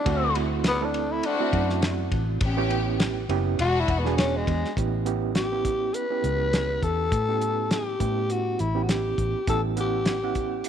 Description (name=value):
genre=straight-eighth soul blues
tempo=102 BPM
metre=4/4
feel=swing 55% on 16ths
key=A mixolydian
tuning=A4 = 436 Hz
part: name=growling tenor saxophone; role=melody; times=0.0-10.7 s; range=G#3 to B4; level=-27 LUFS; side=left 3 dB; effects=tape echo
part: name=rich symphonic string section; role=sustained chords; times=0.0-4.2 s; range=G#3 to G4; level=-32 LUFS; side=left 3 dB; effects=none
part: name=overdriven reed electric piano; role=accompaniment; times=0.1-10.7 s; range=A3 to F#5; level=-29 LUFS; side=right 14 dB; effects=fast tremolo
part: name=vintage muted fingered electric bass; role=bass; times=0.1-10.6 s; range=E1 to A2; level=-28 LUFS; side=left 1 dB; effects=none
part: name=cloth-damped thuddy drum kit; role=drums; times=0.1-10.7 s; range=hi-hat, kick drum, ride cymbal, snare drum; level=-28 LUFS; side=left 1 dB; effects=none
room=light reverb, small room reverb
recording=1960s-style stereo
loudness=-22 LUFS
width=side -8 dB against mid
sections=0.0-4.8 A section; 4.8-10.7 B section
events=tenor saxophone solo 0.0-4.8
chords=0.1 D9; 2.4 A9; 3.6 E9; 4.8 A9